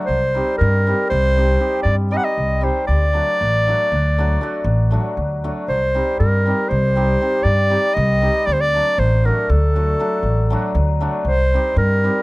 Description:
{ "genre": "balkan folk, Balkan wedding band", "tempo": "236 BPM (eighths)", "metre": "11/8", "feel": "straight", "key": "unclear", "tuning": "A4 = 441 Hz", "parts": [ { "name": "hammered dulcimer", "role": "accompaniment", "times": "0.0-12.2 s", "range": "F#3 to G4", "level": "-24 LUFS", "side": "left 1 dB", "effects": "none" }, { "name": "mellow clarinet", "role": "melody", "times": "0.1-12.2 s", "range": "A4 to F#5", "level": "-19 LUFS", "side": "equal", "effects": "none" }, { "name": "upright bass", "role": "bass", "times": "0.1-12.1 s", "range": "A1 to G2", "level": "-18 LUFS", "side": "equal", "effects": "none" } ], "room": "little or no reverb", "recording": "dry, close 1970s-style studio recording", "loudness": "-15 LUFS", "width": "side -21 dB against mid", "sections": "0.0-5.7 A section; 5.7-12.2 A section", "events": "none", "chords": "0.1 Cm; 2.9 D; 5.7 Cm; 8.5 D; 11.2 Cm" }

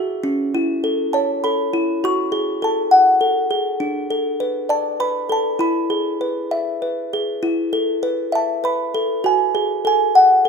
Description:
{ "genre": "children's music, lullaby", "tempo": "100 BPM", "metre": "3/4", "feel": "rubato", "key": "A major", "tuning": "A4 = 442 Hz", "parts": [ { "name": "music box", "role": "solo", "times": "0.0-10.5 s", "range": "C#4 to C#6", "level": "-16 LUFS", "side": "equal", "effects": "none" } ], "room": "light reverb", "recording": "minimal, uncompressed stereo recording", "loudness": "-17 LUFS", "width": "side -6 dB against mid", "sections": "0.0-7.4 A section; 7.4-10.5 A section", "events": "none", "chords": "0.2 A; 2.0 F#madd9; 3.8 Bm7; 5.6 E; 7.4 Asus2; 9.3 F#madd9" }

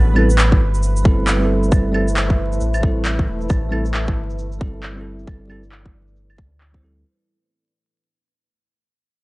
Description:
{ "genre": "future garage", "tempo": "135 BPM", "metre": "4/4", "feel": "swing 62% on 16ths", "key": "A dorian", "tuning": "A4 = 440 Hz", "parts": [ { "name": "deep dark ambient pad", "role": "sustained chords", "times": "0.0-7.1 s", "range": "A3 to D5", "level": "-26 LUFS", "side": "right 1 dB", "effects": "chorus, built-in reverb, sidechain pumping" }, { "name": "warm sub bass", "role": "bass", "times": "0.0-7.0 s", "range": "E1 to D2", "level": "-19 LUFS", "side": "equal", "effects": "sidechain pumping" }, { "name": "bell-like tine electric piano", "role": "accompaniment", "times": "0.1-7.0 s", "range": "G3 to C5", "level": "-24 LUFS", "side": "right 1 dB", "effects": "sidechain pumping, analog delay" }, { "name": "electronic claves, shaker and handclaps", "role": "drums", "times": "0.2-7.0 s", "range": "none", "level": "-23 LUFS", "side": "equal", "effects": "overdrive, low-pass filter on perc, low-pass filter on snare, low-pass filter on room" }, { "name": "electronic kick drum", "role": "drums", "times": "0.5-6.8 s", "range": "none", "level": "-16 LUFS", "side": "equal", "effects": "overdrive" } ], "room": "little or no reverb", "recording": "dry, gritty hardware recording, vinyl crackle, nothing above 10.6 kHz", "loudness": "-15 LUFS", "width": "side -21 dB against mid", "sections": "0.0-7.0 A section", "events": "fade-out 0.0-7.0", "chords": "0.0 Am7" }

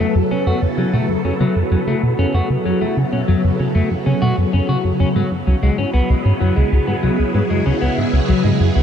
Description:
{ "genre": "ambient, sequencer-driven space music", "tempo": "96 BPM", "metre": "4/4", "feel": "straight", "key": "F# minor", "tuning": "A4 = 440 Hz", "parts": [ { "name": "phased string machine", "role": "sustained chords", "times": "0.0-8.8 s", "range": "Db3 to A4", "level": "-20 LUFS", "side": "equal", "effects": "ensemble chorus, phaser" }, { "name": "semi-hollow electric guitar", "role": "arpeggios", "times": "0.0-8.8 s", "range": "F#3 to F#4", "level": "-22 LUFS", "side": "left 2 dB", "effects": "auto-pan, ping-pong delay" }, { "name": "plucky analog bass", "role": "riff", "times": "0.0-8.8 s", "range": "C#2 to C#3", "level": "-17 LUFS", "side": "equal", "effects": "ensemble chorus, ping-pong delay" } ], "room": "moderate huge ambient reverb, RT60 9.2 s", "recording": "dark, warm production", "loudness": "-15 LUFS", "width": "side -8 dB against mid", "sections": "0.0-8.8 A section", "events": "filter sweep on analog synth bass 0.0-8.8", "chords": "0.0 F#m; 5.2 C#7sus4" }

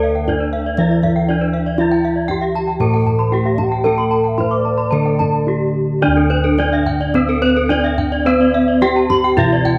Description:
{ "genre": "Balinese gamelan", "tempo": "107-120 BPM", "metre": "4/4", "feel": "straight", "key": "D slendro", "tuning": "A4 = 440 Hz", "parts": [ { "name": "gamelan-type bronze metallophone", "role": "melody", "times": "0.0-9.8 s", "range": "C4-45c to C5-45c", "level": "-21 LUFS", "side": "equal", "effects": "none" }, { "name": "bass bansuri", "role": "second line", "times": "0.0-5.7 s", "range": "A4+24c to G5+30c", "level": "-30 LUFS", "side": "equal", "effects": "none" }, { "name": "gamelan-type bronze metallophone", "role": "accompaniment", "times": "0.0-9.8 s", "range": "D3 to C4-45c", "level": "-27 LUFS", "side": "equal", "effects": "none" }, { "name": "gamelan-type bronze metallophone", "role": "arpeggios", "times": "0.0-9.8 s", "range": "C5-45c to C6-45c", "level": "-26 LUFS", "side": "equal", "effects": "none" }, { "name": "gamelan-type bossed gongs", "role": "bass", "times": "0.0-9.8 s", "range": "D2 to C5-45c", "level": "-21 LUFS", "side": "equal", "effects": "none" }, { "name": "gamelan-type bronze metallophone", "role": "arpeggios", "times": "0.2-9.7 s", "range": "A4+25c to D6", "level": "-25 LUFS", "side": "equal", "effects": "none" }, { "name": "kendang", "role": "percussion", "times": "0.3-9.8 s", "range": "none", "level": "-30 LUFS", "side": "equal", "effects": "none" } ], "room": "moderate echo chamber reverb, RT60 1.9 s", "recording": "none", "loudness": "-16 LUFS", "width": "mono", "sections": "0.0-6.0 A section; 6.0-9.8 B section", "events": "drum fill 5.5-6.0", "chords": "none" }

